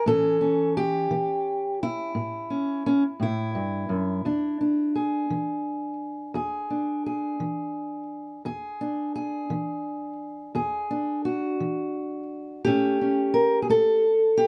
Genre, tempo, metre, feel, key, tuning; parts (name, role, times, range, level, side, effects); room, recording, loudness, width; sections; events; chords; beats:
acoustic country blues, solo or duo; 57 BPM (dotted quarters); 12/8; straight; E mixolydian; A4 = 443 Hz
fingerpicked steel-string acoustic guitar; solo; 0.0-14.5 s; E2 to A#4; -26 LUFS; equal
light reverb; nothing above 10.3 kHz; -26 LUFS; mono
0.0-14.5 A section
0.1 A7; 4.3 E7; 12.6 A7
| 0.07 1.11 2.16 3.20 | 4.25 5.30 6.35 7.40 | 8.45 9.49 10.54 11.59 | 12.64 13.68